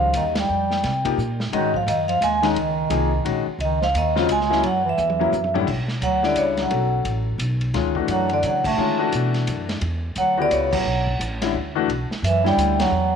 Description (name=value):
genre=modal jazz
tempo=174 BPM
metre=3/4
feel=swing 62% on 8ths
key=B minor from 5.7 s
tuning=A4 = 443 Hz
part: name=vibraphone with medium mallets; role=melody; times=0.0-13.2 s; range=C#5 to A5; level=-22 LUFS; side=equal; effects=none
part: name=clear bass clarinet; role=second line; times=0.0-13.1 s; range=C#3 to A3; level=-26 LUFS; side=right 11 dB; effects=none
part: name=clear concert grand piano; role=accompaniment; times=0.0-12.9 s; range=A2 to A4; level=-25 LUFS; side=left 11 dB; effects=none
part: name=upright bass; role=bass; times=0.0-13.2 s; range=A1 to D3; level=-26 LUFS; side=right 1 dB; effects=none
part: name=vintage drum kit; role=drums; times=0.1-12.9 s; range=crash cymbal, hi-hat, kick drum, ride cymbal, snare drum, toms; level=-30 LUFS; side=right 2 dB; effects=none
room=moderate echo chamber reverb, RT60 1.4 s, small room ambience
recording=1960s-style stereo with parts hard left and right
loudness=-19 LUFS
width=side -7 dB against mid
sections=0.0-5.7 A section; 5.7-13.2 B section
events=band accent 0.3, 8.6, 10.7, 12.8; drum fill 5.0-5.7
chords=0.0 F9sus4; 1.5 Ab9sus4; 4.6 Gb7(no3); 5.7 Bm9; 9.8 Em9